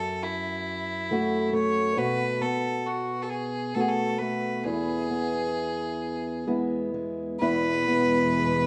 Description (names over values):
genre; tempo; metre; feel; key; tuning
celtic folk, Celtic slow air; 63-70 BPM; 3/4; rubato; E major; A4 = 441 Hz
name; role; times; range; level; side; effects
clear fiddle; melody; 0.0-8.7 s; E4 to C#5; -31 LUFS; equal; none
fingerpicked acoustic archtop guitar; accompaniment; 0.0-8.7 s; E2 to F#4; -29 LUFS; equal; none
rich studio string section; sustained chords; 7.4-8.7 s; E2 to G#3; -33 LUFS; equal; none
room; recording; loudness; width
moderate scoring stage reverb, RT60 1.6 s; dark, warm production, nothing above 10.9 kHz; -27 LUFS; mono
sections
0.0-7.4 A section; 7.4-8.7 A section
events
none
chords
0.0 F#m; 2.0 B5; 4.6 E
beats
0.22 1.08 | 1.96 2.84 3.74 | 4.64 5.54 6.47 | 7.41 8.33